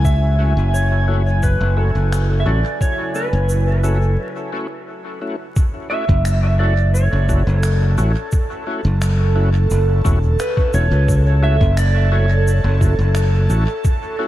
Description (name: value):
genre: ambient dub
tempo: 87 BPM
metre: 4/4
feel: straight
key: F# minor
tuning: A4 = 441 Hz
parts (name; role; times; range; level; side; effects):
- clean lap steel guitar; melody; 0.0-12.8 s; A4 to E5; -24 LUFS; right 2 dB; dub echo
- airy breathy pad; sustained chords; 0.0-14.3 s; C#3 to G#5; -26 LUFS; right 1 dB; chorus, phaser
- modern bright fingered electric bass; bass; 0.0-13.7 s; E1 to C#2; -15 LUFS; equal; tube saturation
- electronic kick drum; drums; 0.0-14.0 s; none; -17 LUFS; equal; studio ambience
- soft-mallet drum kit; drums; 0.1-14.0 s; finger snaps, shaker, toms; -32 LUFS; left 1 dB; studio ambience, dub echo
- overdriven tonewheel organ; stabs; 0.4-14.3 s; A3 to F#4; -28 LUFS; left 2 dB; chorus vibrato, slow rotary speaker, dub echo
room: light reverb, studio reverb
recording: vinyl crackle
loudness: -14 LUFS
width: side -14 dB against mid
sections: 0.0-5.6 A section; 5.6-14.3 B section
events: break 4.2-5.6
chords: 0.0 F#m7